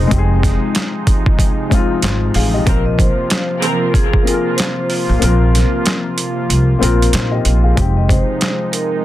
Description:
hip hop, boom-bap hip-hop; 94 BPM; 4/4; swing 60% on 16ths; F minor; A4 = 440 Hz
dark concert grand piano; accompaniment; 0.0-9.0 s; Ab3 to F5; -21 LUFS; left 6 dB; high-pass filter, low-pass filter
warm analog pad; sustained chords; 0.0-9.0 s; C3 to F4; -22 LUFS; right 1 dB; chorus, tremolo, high-pass filter, low-pass filter
upright bass; bass; 0.0-8.2 s; F1 to Bb2; -14 LUFS; equal
boom bap sampler-style drum kit; drums; 0.1-8.9 s; handclaps, hi-hat, kick drum, snare drum; -16 LUFS; equal; overdrive
dark studio string section; stabs; 2.7-3.9 s; F3 to Bb4; -23 LUFS; right 2 dB; high-pass filter, low-pass filter, ping-pong delay
vibraphone with medium hard mallets; melody; 2.9-9.0 s; Ab4 to Eb5; -23 LUFS; right 1 dB; high-pass filter, low-pass filter, ping-pong delay
little or no reverb; dense, heavily limited modern master; -12 LUFS; side -14 dB against mid
0.0-7.8 A section; 7.8-9.0 A section
kick muted 5.2-7.8
0.0 Fm7; 2.7 Bbsus2; 7.8 Fm7
| 0.11 0.75 1.39 2.03 | 2.67 3.30 3.94 4.58 | 5.22 5.86 6.50 7.13 | 7.77 8.41 9.05

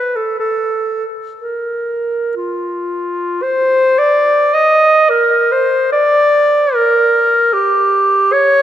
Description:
classical, free, expressive piece for unaccompanied clarinet; 47-77 BPM; 3/4; rubato; Bb major; A4 = 439 Hz
clear clarinet; solo; 0.0-8.6 s; F4 to Eb5; -11 LUFS; equal
wet church reverb, RT60 2.7 s; -11 LUFS; side -11 dB against mid
0.0-3.4 A section; 3.4-8.6 B section
| 0.39 1.40 2.36 | 3.44 4.27 5.11 | 5.95 6.76 7.55 | 8.34

